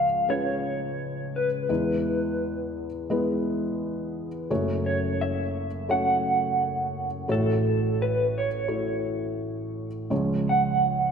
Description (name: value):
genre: acoustic folk-pop ballad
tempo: 86 BPM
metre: 4/4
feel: straight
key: A major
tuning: A4 = 441 Hz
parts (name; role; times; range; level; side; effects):
- electric guitar through a small old amp; melody; 0.0-11.1 s; A4 to F#5; -26 LUFS; right 1 dB; tremolo
- felt-muted upright piano; accompaniment; 0.0-11.1 s; F#1 to C#5; -27 LUFS; equal; none
room: wet scoring stage reverb, RT60 1.9 s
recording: none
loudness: -24 LUFS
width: side -6 dB against mid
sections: 0.0-11.1 A section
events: none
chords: 0.0 C#; 1.7 E; 4.5 F#m; 7.3 A6; 10.1 C#